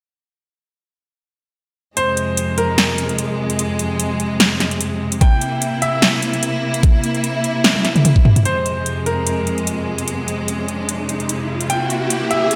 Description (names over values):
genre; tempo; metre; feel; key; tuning
heavy wobble dubstep; 148 BPM; 4/4; swing 55% on 16ths, half-time; F harmonic minor; A4 = 441 Hz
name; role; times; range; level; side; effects
bright baby grand piano; melody; 2.0-12.6 s; Bb4 to G5; -24 LUFS; equal; tape echo
clear symphonic string section; sustained chords; 2.0-12.6 s; F2 to E4; -23 LUFS; equal; sidechain pumping
big-room dance drum kit; drums; 2.0-12.6 s; hi-hat, snare drum, toms; -19 LUFS; equal; none
electronic kick drum; drums; 5.2-8.2 s; none; -14 LUFS; equal; overdrive
riser; sound effects; 9.7-12.6 s; none; -28 LUFS; equal; none
room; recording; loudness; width
wet lush hall reverb, RT60 1.6 s; dreamy mix soaked in reverb; -18 LUFS; mono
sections
2.0-8.5 A section; 8.5-12.6 B section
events
drum fill 7.6-8.5; build-up 8.5-12.6; riser 9.7-12.6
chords
2.0 Fm; 5.2 C7; 8.5 Fm; 11.7 C7